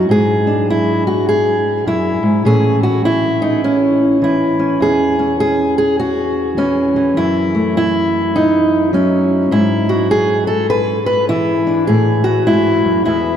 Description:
folk, solo fingerstyle acoustic guitar; 102 BPM; 4/4; swing 63% on 8ths; E major; A4 = 440 Hz
fingerpicked steel-string acoustic guitar; solo; 0.0-13.4 s; E2 to B4; -12 LUFS; equal; slapback echo
wet cathedral reverb, RT60 5.8 s; in a vast, echoing space; -12 LUFS; side -9 dB against mid
0.0-13.4 A section
0.1 E7/G#; 2.4 A; 4.8 E6; 7.2 F#m7; 9.5 E/G#; 11.9 A5

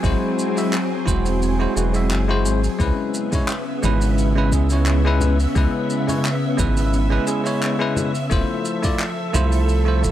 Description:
sunset chillout; 87 BPM; 4/4; swing 53% on 16ths; A4 = 441 Hz
bell-like tine electric piano; accompaniment; 0.0-10.1 s; G#3 to E5; -23 LUFS; moving between left 6 dB and right 6 dB; auto-pan, tape echo
soft string machine; sustained chords; 0.0-10.1 s; C#3 to E5; -24 LUFS; equal; ensemble chorus
round analog bass; bass; 0.0-10.1 s; E1 to C#2; -19 LUFS; equal; transformer saturation
electronic kick drum; drums; 0.0-10.1 s; -22 LUFS; equal
jazz brush drum kit; drums; 0.0-10.1 s; handclaps, hi-hat, shaker; -30 LUFS; equal
congas; percussion; 3.3-9.5 s; -29 LUFS; left 1 dB
little or no reverb; dry, gritty hardware recording; -17 LUFS; side -12 dB against mid
0.0-10.1 A section
0.0 G#7b13; 2.8 C#m7; 8.3 Fmaj7

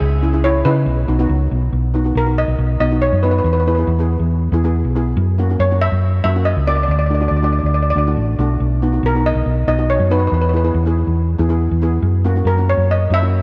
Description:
calypso; 140 BPM; 4/4; straight; B major; A4 = 440 Hz
steel pan; melody; 0.0-13.4 s; D#4 to E5; -22 LUFS; equal
hollow-body short-scale fingered electric bass; bass; 0.0-13.4 s; A1 to C#3; -18 LUFS; equal
steel pan; accompaniment; 0.2-13.4 s; A3 to G#4; -24 LUFS; equal
moderate lush hall reverb, RT60 3.2 s; dreamy mix soaked in reverb; -16 LUFS; mono
0.0-1.7 A section; 1.7-13.4 B section
0.0 C#m; 0.9 B; 3.5 E; 5.2 F#7; 6.9 D; 8.6 B; 10.3 E; 12.0 F#7

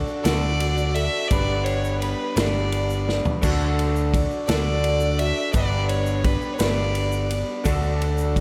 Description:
folk rock and heartland rock; 57 BPM (dotted quarters); 6/8; straight; A4 = 440 Hz
dark concert grand piano; accompaniment; 0.0-8.4 s; D4 to D5; -37 LUFS; equal
picked twelve-string acoustic guitar; accompaniment; 0.0-8.4 s; D3 to B4; -33 LUFS; equal; slapback echo
electric guitar through a small old amp; riff; 0.0-8.4 s; D3 to B4; -31 LUFS; equal; subtle chorus, slapback echo
egg shaker; percussion; 0.1-8.4 s; -47 LUFS; equal
rich fiddle; melody; 0.2-7.4 s; B4 to E5; -30 LUFS; equal; slapback echo
hollow-body short-scale picked electric bass; bass; 0.2-8.4 s; G1 to D2; -26 LUFS; equal
natural country drum kit; drums; 0.2-8.4 s; crash cymbal, kick drum, ride cymbal, snare drum, toms; -29 LUFS; equal
light reverb, small room ambience; -22 LUFS; mono
0.0-8.4 A section
drum fill 3.1-3.4
0.0 D; 1.3 G; 3.4 D; 5.5 G; 7.7 D

